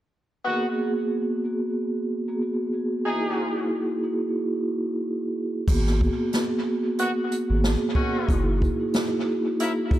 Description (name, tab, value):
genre	hip hop, boom-bap hip-hop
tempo	92 BPM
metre	4/4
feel	swing 56% on 16ths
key	unclear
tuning	A4 = 439 Hz
part	vibraphone with soft mallets	accompaniment	0.5-10.0 s	A#3 to G#4	-24 LUFS	right 1 dB	cassette tape, high-pass filter, low-pass filter, analog delay
part	warm horn section	stabs	0.5-9.7 s	C#3 to G#4	-29 LUFS	left 1 dB	high-pass filter, low-pass filter, analog delay
part	saturated sub bass	bass	5.7-8.7 s	F#1 to G#1	-23 LUFS	equal	none
part	jazz brush drum kit	drums	5.7-10.0 s	crash cymbal, hi-hat, kick drum, snare drum	-26 LUFS	equal	analog delay
room	light reverb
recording	echo-heavy mix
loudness	-23 LUFS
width	side -13 dB against mid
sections	0.5-5.7 A section; 5.7-10.0 B section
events	none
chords	0.5 G#m9; 3.1 F#13; 5.7 G#m9; 8.3 F#13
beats	| 0.46 1.11 1.76 2.42 | 3.07 3.72 4.37 5.03 | 5.68 6.33 6.98 7.63 | 8.29 8.94 9.59